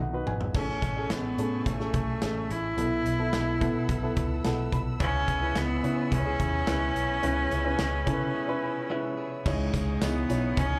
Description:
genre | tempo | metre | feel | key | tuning
piano-driven pop | 108 BPM | 4/4 | straight | unclear | A4 = 441 Hz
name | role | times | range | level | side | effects
dark upright piano | accompaniment | 0.0-10.8 s | A2 to B5 | -34 LUFS | equal | slapback echo
vintage muted fingered electric bass | bass | 0.0-10.8 s | G#1 to C#3 | -34 LUFS | equal | none
modern studio drum kit | drums | 0.3-10.7 s | crash cymbal, hi-hat, kick drum, snare drum, toms | -34 LUFS | equal | none
warm studio string section | sustained chords | 0.5-10.8 s | A3 to E6 | -45 LUFS | equal | none
clear cello | melody | 0.6-10.8 s | G#3 to E4 | -33 LUFS | equal | slapback echo
direct-recorded clean electric guitar | riff | 5.0-10.8 s | C#3 to G#4 | -41 LUFS | equal | slapback echo
tambourine | percussion | 9.5-10.7 s | none | -51 LUFS | equal | none
room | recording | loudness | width
light reverb | live gig heard through the venue's PA, club reverb | -28 LUFS | mono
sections
0.5-9.5 A section; 9.5-10.8 B section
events
upright piano fill 0.0-0.5, 4.2-5.0, 8.3-9.5; drum fill 0.0-0.5; break 8.3-9.5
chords
0.0 B; 0.5 Amaj7; 2.8 B7sus4; 5.0 C#m7; 9.5 C#madd9

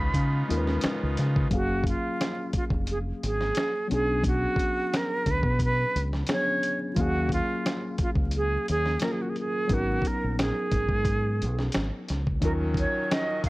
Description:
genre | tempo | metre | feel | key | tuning
R&B, neo-soul | 88 BPM | 4/4 | swing 55% on 16ths | F# major | A4 = 441 Hz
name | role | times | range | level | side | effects
jazz flute | melody | 0.0-13.5 s | E#4 to B5 | -29 LUFS | right 2 dB | none
tine electric piano | accompaniment | 0.0-13.5 s | F#3 to E#5 | -32 LUFS | left 2 dB | auto-pan
pipe organ, trumpet | sustained chords | 0.0-1.5, 12.4-13.5 s | C#3 to E#4 | -36 LUFS | right 1 dB | none
deep dub fingered electric bass | bass | 0.0-13.5 s | E#1 to C#3 | -28 LUFS | equal | tube saturation
dusty soul sampler-style drum kit | drums | 0.1-13.5 s | finger snaps, hi-hat, kick drum, snare drum | -29 LUFS | equal | none
room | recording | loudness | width
little or no reverb | worn, warbling old tape, cassette tape, vinyl crackle, warbly pitch drift | -24 LUFS | side -20 dB against mid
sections
0.0-1.5 A section; 1.5-13.5 B section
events
none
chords
0.0 C#9; 1.5 F#maj9; 3.9 Bm6; 7.0 D#m11; 9.7 G#m11; 12.4 D#m7

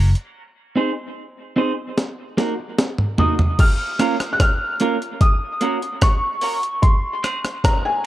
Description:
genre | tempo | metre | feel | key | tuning
dub reggae | 74 BPM | 4/4 | straight | Bb minor | A4 = 438 Hz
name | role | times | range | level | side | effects
clean electric guitar | accompaniment | 0.0-8.1 s | Bb3 to C5 | -23 LUFS | right 3 dB | high-pass filter, dub echo
breakbeat sampler-style drum kit | drums | 0.2-7.8 s | crash cymbal, hi-hat, kick drum, rim click, snare drum, toms | -18 LUFS | equal | none
felt-muted upright piano | melody | 3.2-8.1 s | Ab5 to Gb6 | -22 LUFS | left 1 dB | dub echo
room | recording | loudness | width
moderate spring reverb, RT60 1.7 s, digital ambience | dark, warm production | -18 LUFS | side -14 dB against mid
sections
0.0-3.6 A section; 3.6-8.1 B section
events
break 0.3-3.6; drum fill 2.0-3.6; filter sweep on clean electric guitar 3.6-8.1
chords
0.3 Ab; 2.0 Ebm; 3.6 Bbm; 5.2 Gb; 6.8 Ab

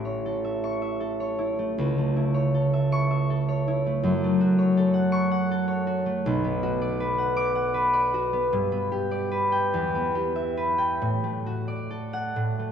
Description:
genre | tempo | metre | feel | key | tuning
classical, solo harp piece | 44-56 BPM (dotted quarters) | 6/8 | rubato | A major, D major from 4.0 s | A4 = 441 Hz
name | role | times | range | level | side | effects
concert harp | solo | 0.0-12.7 s | A1 to D6 | -23 LUFS | equal | none
room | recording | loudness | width
wet concert hall reverb, RT60 2.4 s | dark, warm production | -23 LUFS | side -8 dB against mid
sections
0.0-12.7 A section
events
none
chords
0.0 A; 1.8 A/C#; 4.0 F#m; 6.3 Bm; 8.5 G; 9.7 Em; 11.0 D/A

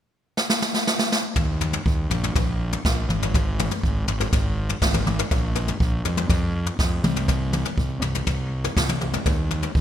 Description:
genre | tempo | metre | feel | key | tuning
math rock and midwest emo | 122 BPM | 4/4 | straight | unclear | A4 = 439 Hz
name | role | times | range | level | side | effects
jazz brush drum kit | drums | 0.4-9.8 s | kick drum, snare drum, toms | -22 LUFS | equal | none
fuzz fingered electric bass | bass | 1.4-9.8 s | Ab1 to F2 | -25 LUFS | equal | overdrive
room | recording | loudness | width
light reverb | bright 1980s-style digital production | -21 LUFS | side -10 dB against mid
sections
0.0-1.4 A section; 1.4-9.8 B section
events
drum fill 0.4-1.4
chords
none

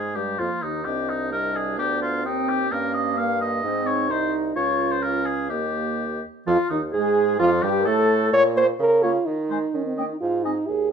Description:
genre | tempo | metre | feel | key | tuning
quick classical-period movement for wind quintet | 129 BPM | 2/4 | straight | Ab major | A4 = 439 Hz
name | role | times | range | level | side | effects
warm oboe | second line | 0.0-10.5 s | Eb4 to F5 | -26 LUFS | left 2 dB | none
mellow French horn | accompaniment | 0.0-10.9 s | Eb3 to Db5 | -24 LUFS | right 2 dB | none
warm clarinet | accompaniment | 0.0-10.5 s | Eb3 to F4 | -31 LUFS | right 9 dB | none
warm bassoon | bass | 0.0-10.9 s | C2 to Eb3 | -28 LUFS | right 3 dB | none
mellow silver concert flute | melody | 0.2-10.5 s | Eb4 to Ab5 | -29 LUFS | left 9 dB | none
room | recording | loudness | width
light reverb | minimal, uncompressed stereo recording | -20 LUFS | side -7 dB against mid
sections
0.0-6.5 A section; 6.5-10.9 B section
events
none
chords
0.4 Eb5; 0.9 Cm; 1.8 Bdim/D; 2.3 Cm/Eb; 2.7 Gm7b5; 3.6 Ab; 4.6 Db; 5.5 Eb; 6.5 Ab5; 7.4 F; 8.3 Bbm; 8.8 Bbm/Db; 9.3 Ab5/Eb; 9.7 Eb5; 10.2 Ab5

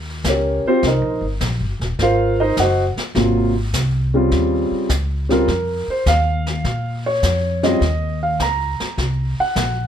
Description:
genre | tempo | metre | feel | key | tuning
jazz piano trio | 103 BPM | 4/4 | swing 69% on 8ths | Eb mixolydian | A4 = 440 Hz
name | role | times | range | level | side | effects
upright bass | bass | 0.0-9.9 s | Eb1 to Bb2 | -21 LUFS | equal | none
jazz brush drum kit | drums | 0.2-9.9 s | brushed snare drum, hi-hat, kick drum, snare drum | -26 LUFS | left 1 dB | none
warm concert grand piano | melody | 0.3-9.9 s | C3 to Bb5 | -18 LUFS | equal | none
room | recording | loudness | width
little or no reverb | none | -16 LUFS | side -9 dB against mid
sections
0.0-9.9 A section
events
none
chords
0.0 Eb13; 2.0 Ab13; 4.3 Eb13; 6.7 Bbm; 7.8 Eb5; 9.0 Gb(#11)

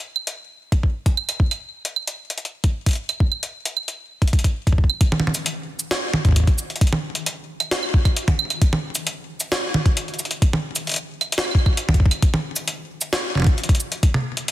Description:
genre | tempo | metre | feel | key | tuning
IDM | 133 BPM | 4/4 | straight | none | none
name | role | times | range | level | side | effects
jungle sampler-style drum kit | drums | 0.2-14.5 s | cabasa, claves, hi-hat, snare drum, toms | -23 LUFS | right 1 dB | small room ambience, ping-pong delay
electronic kick drum | drums | 0.7-14.1 s | none | -16 LUFS | equal | small room ambience
room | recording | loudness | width
light reverb | dense, heavily limited modern master | -19 LUFS | side -15 dB against mid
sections
0.0-5.0 A section; 5.0-14.5 B section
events
none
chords
none

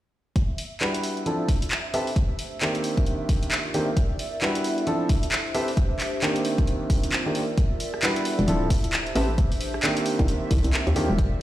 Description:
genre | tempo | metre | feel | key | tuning
UK garage, two-step garage | 133 BPM | 4/4 | swing 60% on 16ths | E phrygian | A4 = 439 Hz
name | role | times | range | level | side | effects
airy breathy pad | sustained chords | 0.5-11.4 s | E5 | -37 LUFS | right 2 dB | chorus, sidechain pumping
electronic kick drum | drums | 0.4-11.3 s | none | -23 LUFS | equal | none
punchy analog drum machine | drums | 0.4-11.3 s | handclaps, hi-hat, rim click | -28 LUFS | equal | none
warbly tape-like pad | texture | 0.4-11.4 s | A3 to E5 | -34 LUFS | equal | chorus, built-in reverb, sidechain pumping
dark grand piano | stabs | 0.8-11.1 s | D#3 to E5 | -27 LUFS | equal | low-pass filter, tape echo
hollow knocking FM bass | bass | 8.4-11.4 s | D1 to Eb2 | -24 LUFS | equal | none
room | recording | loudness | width
light reverb | played on a big sound system in a bare room, stone room reverb | -22 LUFS | side -14 dB against mid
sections
0.4-7.6 A section; 7.6-11.4 B section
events
fade-in on ambient pad 0.4-7.6; filter sweep on grand piano 0.4-7.6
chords
0.4 Em9; 1.3 Dm9; 1.9 Am9; 2.8 Cm9; 4.0 Em9; 4.9 Dm9; 5.5 Am9; 6.4 Cm9; 7.6 Em9; 8.5 Dm9; 9.2 Am9; 10.1 Cm9

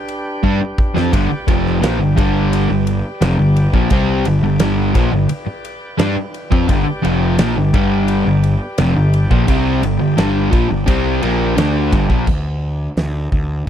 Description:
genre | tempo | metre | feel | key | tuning
classic rock | 86 BPM | 4/4 | straight | G major | A4 = 440 Hz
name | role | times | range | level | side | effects
tonewheel organ | sustained chords | 0.0-12.3 s | D4 to B5 | -28 LUFS | right 1 dB | slow rotary speaker, overdrive
huge arena drum kit | drums | 0.1-13.7 s | crash cymbal, hi-hat, kick drum, ride cymbal, snare drum, splash cymbal | -19 LUFS | equal | none
crunchy overdriven guitar | riff | 0.4-12.3 s | F2 to D4 | -15 LUFS | equal | none
fuzz picked electric bass | bass | 0.4-13.7 s | F1 to G2 | -19 LUFS | equal | overdrive
room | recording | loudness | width
little or no reverb | dry, close 1970s-style studio recording | -13 LUFS | side -10 dB against mid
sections
0.0-12.3 A section; 12.3-13.7 B section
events
drum fill 0.4-1.1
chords
0.0 G; 12.3 N.C.

